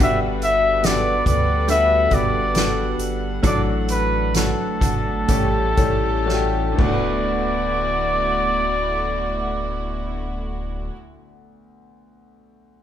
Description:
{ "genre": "pop ballad", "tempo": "57-72 BPM", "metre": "4/4", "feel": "straight", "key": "D major", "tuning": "A4 = 440 Hz", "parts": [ { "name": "clear flugelhorn", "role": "melody", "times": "0.0-10.9 s", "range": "A4 to E5", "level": "-21 LUFS", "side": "left 1 dB", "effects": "none" }, { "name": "clear baby grand piano", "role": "accompaniment", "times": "0.0-12.8 s", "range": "D2 to B4", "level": "-27 LUFS", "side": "left 4 dB", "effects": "none" }, { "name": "warm studio string section", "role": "sustained chords", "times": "0.0-10.9 s", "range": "D3 to F#5", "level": "-30 LUFS", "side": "right 1 dB", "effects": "none" }, { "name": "direct-recorded clean electric guitar", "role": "arpeggios", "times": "0.0-11.1 s", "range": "A2 to B4", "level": "-29 LUFS", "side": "right 4 dB", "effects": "spring reverb" }, { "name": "sub bass with octave", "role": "bass", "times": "0.0-10.9 s", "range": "D1 to D2", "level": "-26 LUFS", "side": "equal", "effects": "none" }, { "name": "soft-mallet drum kit", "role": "drums", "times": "0.0-7.0 s", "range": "crash cymbal, hi-hat, kick drum, snare drum", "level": "-22 LUFS", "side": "right 1 dB", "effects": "none" } ], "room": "moderate large studio reverb, RT60 1.2 s", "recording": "band playing live in one room", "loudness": "-18 LUFS", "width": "side -10 dB against mid", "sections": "0.0-7.3 A section; 7.3-11.6 B section", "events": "slowing down 0.0-7.3; drum fill 6.3-7.3", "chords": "0.0 Gmaj7; 5.3 A7; 6.8 D6" }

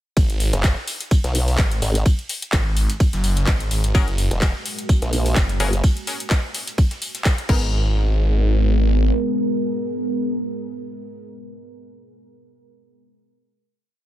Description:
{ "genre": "bass house", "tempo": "127 BPM", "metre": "4/4", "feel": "swing 55% on 16ths", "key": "G# minor", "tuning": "A4 = 445 Hz", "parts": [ { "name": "phased detuned saw bass", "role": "bass", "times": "0.2-9.1 s", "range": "F#1 to G#1", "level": "-19 LUFS", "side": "equal", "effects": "phaser, tube saturation, sidechain pumping" }, { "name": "dusty soul sampler-style drum kit", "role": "drums", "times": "0.2-7.4 s", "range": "hi-hat, snare drum, tambourine", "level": "-33 LUFS", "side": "right 2 dB", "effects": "sidechain pumping on perc, high-pass filter on perc, high-pass filter on snare, sidechain pumping on hats, high-pass filter on hats, high-pass filter on room" }, { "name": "electronic kick drum", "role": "drums", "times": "0.2-7.6 s", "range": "none", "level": "-17 LUFS", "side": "equal", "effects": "none" }, { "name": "garage drum kit", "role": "drums", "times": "0.2-7.6 s", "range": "crash cymbal, handclaps, hi-hat, ride cymbal", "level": "-27 LUFS", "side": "left 1 dB", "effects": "none" }, { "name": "formant-sweep wobble bass", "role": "bass", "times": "0.5-5.8 s", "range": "E1 to B1", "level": "-20 LUFS", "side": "equal", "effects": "chorus, tube saturation, sidechain pumping" }, { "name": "deep dark ambient pad", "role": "sustained chords", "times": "4.7-11.3 s", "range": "G#3 to A#4", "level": "-25 LUFS", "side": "equal", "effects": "chorus, built-in reverb, sidechain pumping" }, { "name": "band-passed chord stab", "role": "stabs", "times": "3.9-11.3 s", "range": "B3 to A#4", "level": "-30 LUFS", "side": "left 3 dB", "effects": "chorus, sidechain pumping, digital delay" } ], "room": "little or no reverb", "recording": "none", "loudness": "-18 LUFS", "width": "side -13 dB against mid", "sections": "0.2-7.7 drop; 7.7-11.5 final hit", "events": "drop 0.2-7.7", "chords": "0.2 N.C.; 3.9 F#add9; 7.5 G#madd9" }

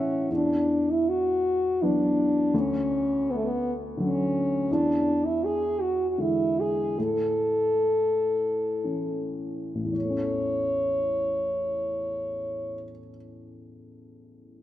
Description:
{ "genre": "celtic folk, Celtic slow air", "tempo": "51-85 BPM", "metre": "3/4", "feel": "rubato", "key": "A major", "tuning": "A4 = 440 Hz", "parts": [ { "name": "mellow French horn", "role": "melody", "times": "0.0-12.9 s", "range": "A3 to C#5", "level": "-25 LUFS", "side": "equal", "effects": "none" }, { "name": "dark upright piano", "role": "accompaniment", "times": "0.0-14.6 s", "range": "A1 to F#5", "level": "-30 LUFS", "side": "left 1 dB", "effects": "none" } ], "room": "light reverb", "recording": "none", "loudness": "-24 LUFS", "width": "side -13 dB against mid", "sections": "0.3-10.0 A section; 10.0-13.4 B section", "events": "upright piano fill 0.0; slowing down 4.7-10.0", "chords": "0.3 Esus2; 2.5 D; 4.7 E7; 7.0 A" }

